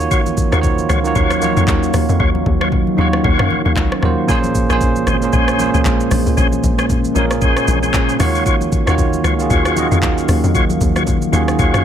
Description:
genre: amapiano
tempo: 115 BPM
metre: 4/4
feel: swing 58% on 16ths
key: unclear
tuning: A4 = 439 Hz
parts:
  - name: bell-like tine electric piano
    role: accompaniment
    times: 0.0-11.8 s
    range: Bb2 to Eb5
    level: -18 LUFS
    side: right 5 dB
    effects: none
  - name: deep dark ambient pad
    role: sustained chords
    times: 0.0-11.8 s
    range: Eb3 to F5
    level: -22 LUFS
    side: left 3 dB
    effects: chorus, built-in reverb, sidechain pumping
  - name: tight log drum bass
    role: bass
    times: 0.0-11.8 s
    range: Ab1 to Gb2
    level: -18 LUFS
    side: left 1 dB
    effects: none
  - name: smooth R&B drum kit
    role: drums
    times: 0.0-11.8 s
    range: handclaps, hi-hat, kick drum, rim click, shaker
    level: -19 LUFS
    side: left 1 dB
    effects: overdrive
  - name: percussive tonewheel organ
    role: stabs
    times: 0.1-11.8 s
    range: Db4 to Db5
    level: -22 LUFS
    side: left 3 dB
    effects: overdrive, fast rotary speaker, digital delay
  - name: congas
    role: percussion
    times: 0.3-11.7 s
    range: none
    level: -27 LUFS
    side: left 4 dB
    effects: none
room: little or no reverb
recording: none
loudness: -13 LUFS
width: side -9 dB against mid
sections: 0.0-11.8 A section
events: hi-hats muted 2.2-4.3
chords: 0.0 Ebm9; 4.3 Bbm9; 8.2 Ebm9

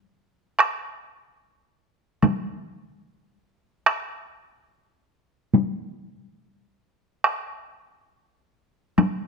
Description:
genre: japanese traditional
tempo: 72 BPM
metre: 4/4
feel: rubato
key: none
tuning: none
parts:
  - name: taiko ensemble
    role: percussion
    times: 0.6-9.2 s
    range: none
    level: -20 LUFS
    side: equal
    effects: none
room: moderate recital hall reverb, RT60 1.4 s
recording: close, detailed microphones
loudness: -22 LUFS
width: side -4 dB against mid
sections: 0.0-9.3 A section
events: none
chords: none

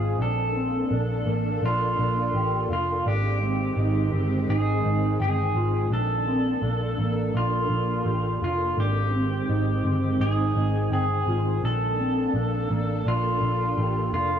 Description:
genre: dream pop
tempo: 84 BPM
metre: 4/4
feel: straight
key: unclear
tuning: A4 = 440 Hz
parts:
  - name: pedal steel guitar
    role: melody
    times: 0.0-14.4 s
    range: F4 to A4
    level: -28 LUFS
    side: right 1 dB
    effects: tape echo
  - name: soft string machine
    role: sustained chords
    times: 0.0-14.4 s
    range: Eb3 to G5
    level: -30 LUFS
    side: equal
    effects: ensemble chorus
  - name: mellow electric guitar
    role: arpeggios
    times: 0.0-14.4 s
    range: Bb3 to G5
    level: -30 LUFS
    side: equal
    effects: ensemble chorus, tape echo
  - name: vintage muted picked electric bass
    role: bass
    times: 0.0-14.4 s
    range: F1 to Bb1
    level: -26 LUFS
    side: equal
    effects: none
room: light reverb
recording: dry, gritty hardware recording, cassette tape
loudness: -22 LUFS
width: side -8 dB against mid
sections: 0.0-14.4 A section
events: none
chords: 0.2 Bbmaj7; 3.1 Abmaj7; 5.9 Bbmaj7; 8.8 Abmaj7; 11.6 Bbmaj7

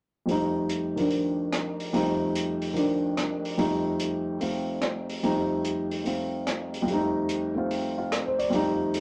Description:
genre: modal jazz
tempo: 146 BPM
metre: 4/4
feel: swing 66% on 8ths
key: F mixolydian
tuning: A4 = 440 Hz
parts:
  - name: warm concert grand piano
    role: accompaniment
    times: 0.3-9.0 s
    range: F2 to D5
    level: -28 LUFS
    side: equal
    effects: none
  - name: open jazz drum kit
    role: drums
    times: 0.3-9.0 s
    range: hi-hat, rim click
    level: -37 LUFS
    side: equal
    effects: none
room: wet small room reverb, RT60 0.6 s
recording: none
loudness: -28 LUFS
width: mono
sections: 0.3-9.0 A section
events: none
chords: 0.3 F7

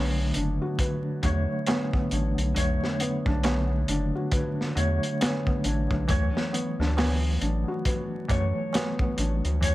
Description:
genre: trip hop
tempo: 68 BPM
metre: 4/4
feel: swing 60% on 16ths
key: B minor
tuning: A4 = 440 Hz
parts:
  - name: mellow electric guitar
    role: accompaniment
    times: 0.0-9.7 s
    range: D3 to C#5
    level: -29 LUFS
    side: equal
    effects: tremolo, low-pass filter, tape echo
  - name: felt-muted upright piano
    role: arpeggios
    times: 0.0-9.7 s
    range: B3 to B4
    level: -33 LUFS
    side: left 2 dB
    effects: vintage 12-bit sampler grit, digital delay
  - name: round analog bass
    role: bass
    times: 0.0-9.7 s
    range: F#1 to F#2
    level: -26 LUFS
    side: equal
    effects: none
  - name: crunchy breakbeat drum kit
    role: drums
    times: 0.3-9.7 s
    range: hi-hat, kick drum, snare drum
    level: -28 LUFS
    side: equal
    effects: none
  - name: tabla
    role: percussion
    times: 1.7-9.7 s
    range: none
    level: -35 LUFS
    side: right 2 dB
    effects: none
room: light reverb, studio ambience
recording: vinyl crackle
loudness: -24 LUFS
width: side -16 dB against mid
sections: 0.0-9.7 A section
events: filter sweep on clean electric guitar 0.0-9.7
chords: 0.0 Bm7; 6.1 Dmaj7

